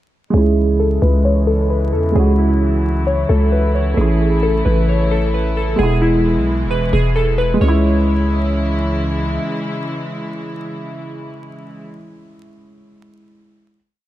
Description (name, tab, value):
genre	hip hop, trap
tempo	132 BPM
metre	4/4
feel	half-time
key	C# minor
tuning	A4 = 440 Hz
part	glassy digital keys	melody	0.3-8.9 s	E4 to C#5	-20 LUFS	equal	chorus, low-pass filter, digital delay
part	dark concert grand piano	accompaniment	0.3-13.8 s	G#3 to F#4	-23 LUFS	right 3 dB	low-pass filter
part	warm studio string section	sustained chords	0.3-11.8 s	B2 to E4	-24 LUFS	left 1 dB	low-pass filter
part	growling 808-style bass	bass	0.3-9.4 s	E1 to E2	-16 LUFS	equal	none
room	light reverb, studio reverb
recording	dark, warm production, vinyl crackle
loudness	-14 LUFS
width	side -14 dB against mid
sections	0.3-7.6 breakdown; 7.6-11.2 final chord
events	filter sweep 0.3-7.6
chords	0.3 C#m; 4.0 A; 5.8 E; 7.6 C#m